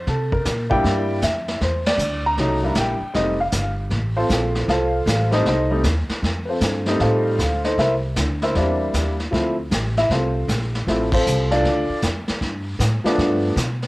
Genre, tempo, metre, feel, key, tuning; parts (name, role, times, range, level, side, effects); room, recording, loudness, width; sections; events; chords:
jazz piano trio; 156 BPM; 4/4; swing 65% on 8ths; C mixolydian; A4 = 439 Hz
warm upright piano; melody; 0.0-13.5 s; F3 to Bb5; -20 LUFS; equal; cassette tape
upright bass; bass; 0.0-13.9 s; F1 to C3; -23 LUFS; equal
vintage brush drum kit; drums; 0.1-13.9 s; brushed snare drum, crash cymbal, hi-hat, kick drum, ride cymbal, snare drum; -25 LUFS; equal; cassette tape
light reverb, studio reverb; home recording on cassette; -18 LUFS; side -20 dB against mid
0.0-13.9 A section
band accent 1.8, 11.1
0.1 C7; 3.1 F7; 7.8 C7; 9.3 Dm7; 12.4 G7